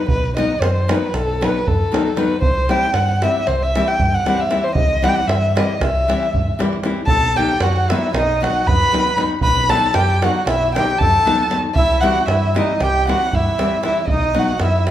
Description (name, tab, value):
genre	balkan folk, Balkan wedding band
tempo	231 BPM (eighths)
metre	9/8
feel	straight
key	B phrygian dominant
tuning	A4 = 440 Hz
part	dark violin	melody	0.0-14.9 s	A4 to B5	-18 LUFS	left 1 dB	none
part	hollow-body short-scale fingered electric bass	bass	0.1-14.9 s	B1 to G2	-21 LUFS	equal	none
part	davul	percussion	0.1-14.9 s	none	-23 LUFS	right 2 dB	none
part	nylon-string guitar	accompaniment	0.4-14.9 s	D#3 to E4	-23 LUFS	left 3 dB	none
part	accordion	second line	7.1-14.9 s	D#4 to B4	-23 LUFS	right 4 dB	none
room	wet recital hall reverb, RT60 1.7 s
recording	minimal, uncompressed stereo recording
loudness	-15 LUFS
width	side -11 dB against mid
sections	0.0-14.9 A section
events	none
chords	0.0 B; 2.4 C; 7.1 B; 11.7 C; 14.1 B